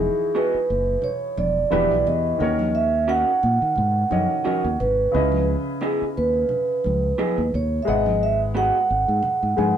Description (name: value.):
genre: lush 1970s-style soul.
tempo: 88 BPM.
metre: 4/4.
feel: swing 54% on 16ths.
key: C# minor.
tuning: A4 = 442 Hz.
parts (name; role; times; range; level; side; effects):
vibraphone with soft mallets; melody; 0.0-9.8 s; G#4 to F#5; -21 LUFS; right 3 dB; none.
clear concert grand piano; accompaniment; 0.0-9.8 s; C#3 to G#5; -28 LUFS; left 3 dB; none.
fingered electric bass; bass; 0.0-9.7 s; E1 to D#3; -24 LUFS; left 1 dB; none.
electric guitar through a small old amp; riff; 0.3-8.8 s; B3 to E5; -26 LUFS; right 2 dB; none.
congas; percussion; 1.0-9.8 s; none; -32 LUFS; right 1 dB; none.
room: moderate small room reverb, RT60 0.5 s.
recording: band playing live in one room.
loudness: -19 LUFS.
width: side -9 dB against mid.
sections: 0.0-9.8 A section.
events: none.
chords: 0.0 Emaj9; 1.7 Em7; 2.4 D#m7; 5.1 C#m9; 7.9 G#m7.